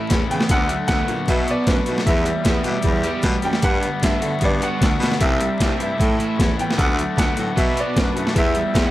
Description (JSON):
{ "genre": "indie rock", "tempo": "153 BPM", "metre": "4/4", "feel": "straight", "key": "D major", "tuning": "A4 = 440 Hz", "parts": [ { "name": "bright upright piano", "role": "melody", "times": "0.0-8.9 s", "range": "B4 to G5", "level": "-25 LUFS", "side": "equal", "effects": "slapback echo, plate reverb" }, { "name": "crunchy overdriven guitar", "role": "riff", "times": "0.0-8.9 s", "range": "E2 to G4", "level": "-26 LUFS", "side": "left 6 dB", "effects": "none" }, { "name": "overdriven electric guitar", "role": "riff", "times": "0.0-8.9 s", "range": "G2 to C4", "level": "-27 LUFS", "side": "right 5 dB", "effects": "lush chorus" }, { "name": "growling baritone saxophone", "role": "bass", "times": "0.1-8.9 s", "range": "C2 to D3", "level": "-24 LUFS", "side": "equal", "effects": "none" }, { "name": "boom bap sampler-style drum kit", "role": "drums", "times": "0.1-8.8 s", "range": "hi-hat, kick drum, snare drum", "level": "-20 LUFS", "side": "equal", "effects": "overdrive" }, { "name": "combo organ", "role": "sustained chords", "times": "5.2-8.9 s", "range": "B3 to E5", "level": "-34 LUFS", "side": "right 1 dB", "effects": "none" } ], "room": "light reverb", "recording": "none", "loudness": "-17 LUFS", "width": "side -15 dB against mid", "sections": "0.0-8.9 A section", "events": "none", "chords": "0.5 D6; 1.3 Bm7; 2.1 Em; 3.6 Gmaj7; 5.2 Cadd9; 6.0 Aadd9; 6.8 D6; 7.6 Bm7; 8.4 Em" }